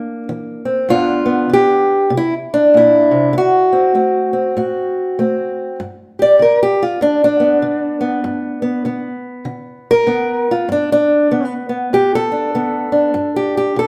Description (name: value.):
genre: acoustic country blues, solo or duo.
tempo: 98 BPM.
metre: 4/4.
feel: swing 62% on 8ths.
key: G major.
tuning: A4 = 441 Hz.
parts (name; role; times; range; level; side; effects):
fingerpicked old ladder-braced acoustic guitar; solo; 0.0-13.9 s; G2 to D5; -15 LUFS; equal; none.
room: moderate large studio reverb, RT60 1.1 s.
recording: band playing live in one room.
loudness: -15 LUFS.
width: mono.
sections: 0.0-5.8 A section; 5.8-13.9 B section.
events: steel-string acoustic guitar solo 5.8-13.9.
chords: 0.0 C7; 0.9 G7; 2.1 C7; 3.3 D7; 5.8 G.